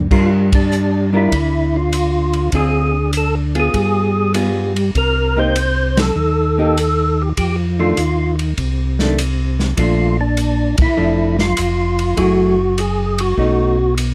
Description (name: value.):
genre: soul jazz organ trio.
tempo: 99 BPM.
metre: 4/4.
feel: swing 69% on 8ths.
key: unclear.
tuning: A4 = 440 Hz.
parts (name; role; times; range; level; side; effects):
tonewheel organ; bass; 0.0-14.1 s; F1 to G2; -20 LUFS; equal; chorus vibrato, slow rotary speaker.
percussive tonewheel organ; melody; 0.1-13.9 s; D4 to C5; -21 LUFS; equal; slow rotary speaker, overdrive, chorus vibrato.
vintage hollow-body jazz guitar; accompaniment; 0.1-13.8 s; D3 to Bb4; -21 LUFS; equal; none.
open jazz drum kit; drums; 0.1-14.1 s; crash cymbal, hi-hat, kick drum, ride cymbal, snare drum; -24 LUFS; equal; none.
room: light reverb.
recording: close, detailed microphones.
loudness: -16 LUFS.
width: mono.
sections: 0.1-14.1 A section.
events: band accent 0.4-0.7, 5.9-6.2, 10.7-11.0.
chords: 0.1 Gm7; 2.5 Dm7b5; 3.7 G7b9; 5.0 Cm7; 7.4 F6; 9.8 Bbmaj7; 12.2 F#m9; 13.4 B9.